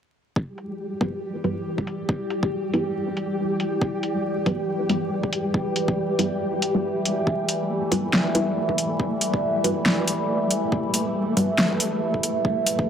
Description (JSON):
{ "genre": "deep dubstep", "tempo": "139 BPM", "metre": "4/4", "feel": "swing 58% on 16ths, half-time", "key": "E minor", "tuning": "A4 = 440 Hz", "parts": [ { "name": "overtone-sweeping drone", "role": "sustained chords", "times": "1.2-12.9 s", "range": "E3 to G4", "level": "-26 LUFS", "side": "equal", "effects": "chorus, built-in reverb, phaser" }, { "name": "electronic kick drum", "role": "drums", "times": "0.4-12.9 s", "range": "none", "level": "-25 LUFS", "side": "equal", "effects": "high-pass filter on kick" }, { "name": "flickering grainy texture", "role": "texture", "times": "0.5-12.9 s", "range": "G3 to G4", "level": "-28 LUFS", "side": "equal", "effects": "built-in reverb" }, { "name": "deep house drum kit", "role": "drums", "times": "0.6-12.8 s", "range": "hi-hat, snare drum", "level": "-23 LUFS", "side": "equal", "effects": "low-pass filter on hats, low-pass filter on snare" }, { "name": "filtered dub chord stab", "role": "stabs", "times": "1.0-11.5 s", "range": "G3 to B4", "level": "-27 LUFS", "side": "equal", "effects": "phaser, lush chorus, dub echo" } ], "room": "moderate spring reverb, RT60 1.5 s, digital ambience", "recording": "vinyl crackle", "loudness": "-22 LUFS", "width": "side -8 dB against mid", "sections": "0.4-12.9 A section", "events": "filter sweep on synth stab 0.4-12.9", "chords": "0.4 Emadd9", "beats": "| 0.36 0.79 1.23 1.66 | 2.09 2.52 2.95 3.38 | 3.82 4.25 4.68 5.11 | 5.54 5.97 6.41 6.84 | 7.27 7.70 8.13 8.56 | 9.00 9.43 9.86 10.29 | 10.72 11.15 11.59 12.02 | 12.45 12.88" }